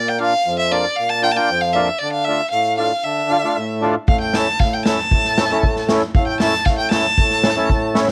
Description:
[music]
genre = klezmer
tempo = 116 BPM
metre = 4/4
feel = straight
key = A phrygian dominant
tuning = A4 = 440 Hz
[part]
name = clear violin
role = melody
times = 0.0-7.9 s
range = D5 to A5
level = -21 LUFS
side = equal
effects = cassette tape
[part]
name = mellow accordion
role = accompaniment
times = 0.0-8.1 s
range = F2 to F4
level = -22 LUFS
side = equal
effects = cassette tape
[part]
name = street-band drum kit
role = drums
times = 4.1-8.1 s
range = kick drum, snare drum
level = -21 LUFS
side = equal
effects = cassette tape
[sound]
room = light reverb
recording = home recording on cassette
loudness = -18 LUFS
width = mono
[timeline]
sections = 0.0-8.1 A section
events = none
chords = 0.0 Bb; 2.0 Dm; 4.1 A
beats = 0.47 0.99 1.50 | 2.02 2.54 3.05 3.57 | 4.08 4.60 5.12 5.63 | 6.15 6.66 7.18 7.69

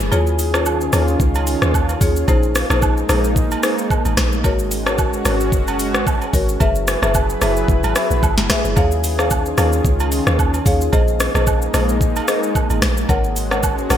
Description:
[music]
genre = amapiano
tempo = 111 BPM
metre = 4/4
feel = swing 55% on 16ths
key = Eb minor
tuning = A4 = 442 Hz
[part]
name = lush unison pad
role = sustained chords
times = 0.0-14.0 s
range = Eb3 to Cb5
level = -23 LUFS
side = equal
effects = chorus, sidechain pumping
[part]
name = deep log drum bass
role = bass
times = 0.0-14.0 s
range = Gb1 to Eb2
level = -20 LUFS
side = equal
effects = none
[part]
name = afro-pop drum kit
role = drums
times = 0.0-14.0 s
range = hi-hat, kick drum, rim click, shaker, snare drum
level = -19 LUFS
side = equal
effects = gated reverb
[part]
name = marimba with medium mallets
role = stabs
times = 0.1-14.0 s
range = Eb4 to Gb5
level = -23 LUFS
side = left 2 dB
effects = digital delay
[part]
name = agogo bells and woodblock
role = percussion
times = 0.1-14.0 s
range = none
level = -27 LUFS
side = right 7 dB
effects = none
[sound]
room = light reverb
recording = bright 1980s-style digital production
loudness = -15 LUFS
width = side -10 dB against mid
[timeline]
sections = 0.0-14.0 A section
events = kick muted 0.1-1.2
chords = 0.1 Eb9sus4; 2.3 Bb9sus4; 4.4 Ab9sus4; 6.6 Gb9sus4; 8.8 Eb9sus4; 10.9 Bb9sus4; 13.1 Ab9sus4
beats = | 0.12 0.66 1.20 1.74 | 2.28 2.82 3.36 3.90 | 4.44 4.98 5.53 6.07 | 6.61 7.15 7.69 8.23 | 8.77 9.31 9.85 10.39 | 10.93 11.47 12.01 12.55 | 13.09 13.63

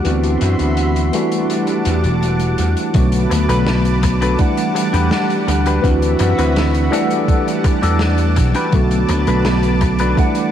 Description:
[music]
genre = vaporwave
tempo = 83 BPM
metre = 4/4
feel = straight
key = E minor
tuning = A4 = 440 Hz
[part]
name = tine electric piano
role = accompaniment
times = 0.0-10.5 s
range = D3 to F#5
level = -18 LUFS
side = equal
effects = medium stereo tremolo, analog chorus, tape echo
[part]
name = lush unison pad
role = sustained chords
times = 0.0-10.5 s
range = G3 to D6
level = -24 LUFS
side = equal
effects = chorus
[part]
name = loose indie drum kit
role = drums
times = 0.0-10.5 s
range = hi-hat, snare drum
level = -26 LUFS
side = left 2 dB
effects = none
[part]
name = vintage slap bass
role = bass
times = 0.1-10.1 s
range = E1 to F#2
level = -17 LUFS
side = equal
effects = none
[part]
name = electronic kick drum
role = drums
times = 2.9-10.3 s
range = none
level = -16 LUFS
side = equal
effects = overdrive
[part]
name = clean electric guitar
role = riff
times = 3.3-10.2 s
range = C4 to B4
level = -23 LUFS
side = left 3 dB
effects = lush chorus, vintage 12-bit sampler grit, tape echo
[sound]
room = moderate huge ambient reverb, RT60 6.9 s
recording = dreamy mix soaked in reverb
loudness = -13 LUFS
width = side -10 dB against mid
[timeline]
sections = 0.0-2.9 A section; 2.9-10.5 B section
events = none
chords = 0.1 D13; 1.1 Em11; 2.9 Bm7; 4.4 Em11; 5.8 D13; 6.9 Em11; 8.7 Bm7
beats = | 0.06 0.78 1.50 2.22 | 2.95 3.67 4.39 5.12 | 5.84 6.56 7.28 8.01 | 8.73 9.45 10.18

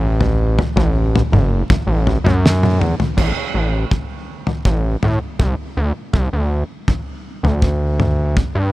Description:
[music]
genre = psychedelic rock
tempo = 81 BPM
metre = 4/4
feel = straight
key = A dorian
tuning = A4 = 440 Hz
[part]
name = gritty driven synth bass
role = bass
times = 0.0-8.7 s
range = F#1 to A2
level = -16 LUFS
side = equal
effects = none
[part]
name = damped 70s drum kit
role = drums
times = 0.2-8.5 s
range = crash cymbal, kick drum, snare drum, toms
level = -18 LUFS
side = equal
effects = none
[sound]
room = light reverb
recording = none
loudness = -15 LUFS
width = side -18 dB against mid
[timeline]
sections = 0.0-3.2 A section; 3.2-8.7 B section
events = drum fill 2.4-3.2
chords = none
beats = | 0.22 0.96 1.70 2.44 | 3.18 3.92 4.66 5.40 | 6.14 6.89 7.63 8.37

